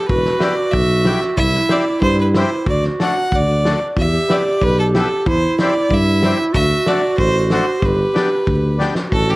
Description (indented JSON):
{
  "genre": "alpine folk, alpine dance band",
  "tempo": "93 BPM",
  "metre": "2/4",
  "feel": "straight",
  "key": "G major",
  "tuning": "A4 = 440 Hz",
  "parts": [
    { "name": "clear fiddle", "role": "melody", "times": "0.0-9.4 s", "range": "G4 to F#5", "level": "-20 LUFS", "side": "right 1 dB", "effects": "analog delay" },
    { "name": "warm clarinet", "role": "second line", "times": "0.0-9.4 s", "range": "E4 to G4", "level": "-20 LUFS", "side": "right 2 dB", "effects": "none" },
    { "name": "mellow tuba", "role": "bass", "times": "0.1-9.4 s", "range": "E1 to G2", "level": "-18 LUFS", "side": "equal", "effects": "none" },
    { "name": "loose indie drum kit", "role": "drums", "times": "0.1-9.4 s", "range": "hi-hat, kick drum, snare drum", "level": "-21 LUFS", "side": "equal", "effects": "none" },
    { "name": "accordion", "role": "accompaniment", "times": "0.4-8.9 s", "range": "A3 to G4", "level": "-23 LUFS", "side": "left 3 dB", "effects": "none" }
  ],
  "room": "moderate spring reverb, RT60 1.3 s, studio reverb",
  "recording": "vinyl crackle",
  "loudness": "-14 LUFS",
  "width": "side -20 dB against mid",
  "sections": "0.0-9.1 A section",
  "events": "drum fill 8.8-9.1",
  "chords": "0.1 Em; 1.4 C; 2.7 D; 4.0 Em; 5.3 C/E; 6.5 D; 7.8 G",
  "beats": "| 0.10 0.74 | 1.38 2.02 | 2.67 3.32 | 3.96 4.61 | 5.26 5.91 | 6.54 7.19 | 7.83 8.47 | 9.13"
}